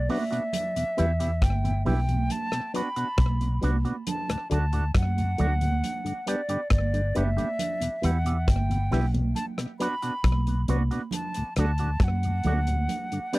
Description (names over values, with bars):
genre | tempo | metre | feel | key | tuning
roots reggae | 68 BPM | 4/4 | straight | E minor | A4 = 440 Hz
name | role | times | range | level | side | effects
hollow concert flute | melody | 0.0-13.4 s | D5 to B5 | -32 LUFS | equal | tape echo
vintage muted fingered electric bass | bass | 0.0-12.9 s | F#1 to F#2 | -25 LUFS | equal | none
electric guitar with an envelope filter | accompaniment | 0.1-13.4 s | A3 to G4 | -34 LUFS | right 4 dB | tape echo
mellow tonewheel organ | accompaniment | 0.1-13.4 s | D2 to E4 | -30 LUFS | left 1 dB | chorus vibrato, slow rotary speaker
damped 70s drum kit | drums | 0.1-13.4 s | hi-hat, kick drum, rim click | -27 LUFS | equal | none
congas | percussion | 0.1-13.1 s | none | -33 LUFS | right 4 dB | none
room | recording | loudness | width
little or no reverb | dry, close 1970s-style studio recording | -24 LUFS | side -20 dB against mid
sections
0.5-13.4 A section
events
none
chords
0.0 Bm; 0.5 Em; 2.3 Bm; 4.1 D; 5.8 G; 7.6 Em; 9.4 Bm; 11.1 D; 12.9 G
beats
| 0.54 1.42 2.30 3.18 | 4.06 4.95 5.83 6.71 | 7.59 8.47 9.36 10.24 | 11.12 12.00 12.88